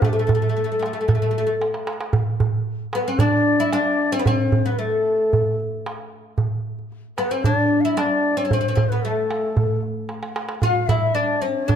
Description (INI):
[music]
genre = Arabic maqam ensemble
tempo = 113 BPM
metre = 4/4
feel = straight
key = D maqam rast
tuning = A4 = 439 Hz
[part]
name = oud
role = melody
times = 0.0-11.8 s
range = A3 to F#4-50c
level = -22 LUFS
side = left 1 dB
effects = none
[part]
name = breathy reedy ney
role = second line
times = 0.0-11.8 s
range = G4 to F5+41c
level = -25 LUFS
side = left 5 dB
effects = none
[part]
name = darbuka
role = percussion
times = 0.0-11.8 s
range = none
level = -22 LUFS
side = right 3 dB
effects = none
[sound]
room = light reverb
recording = close, detailed microphones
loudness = -18 LUFS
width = side -8 dB against mid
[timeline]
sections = 0.0-2.1 A section; 2.1-11.8 B section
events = drum fill 1.6-2.1, 10.1-10.6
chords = none